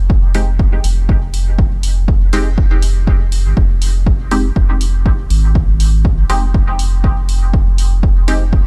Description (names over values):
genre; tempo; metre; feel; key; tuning
dub techno; 121 BPM; 4/4; straight; F minor; A4 = 443 Hz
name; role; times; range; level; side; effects
round analog bass; bass; 0.0-8.7 s; F1 to Ab1; -17 LUFS; equal; sidechain pumping
electronic kick drum; drums; 0.1-8.6 s; none; -16 LUFS; equal; studio reverb
filtered dub chord stab; stabs; 0.3-8.4 s; Ab3 to G4; -25 LUFS; equal; phaser, sidechain pumping, dub echo
electronic hi-hat; drums; 0.3-8.4 s; none; -29 LUFS; equal; studio reverb
room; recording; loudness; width
digital ambience; dark, warm production; -14 LUFS; mono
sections
0.0-8.7 A section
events
none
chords
0.0 Fm7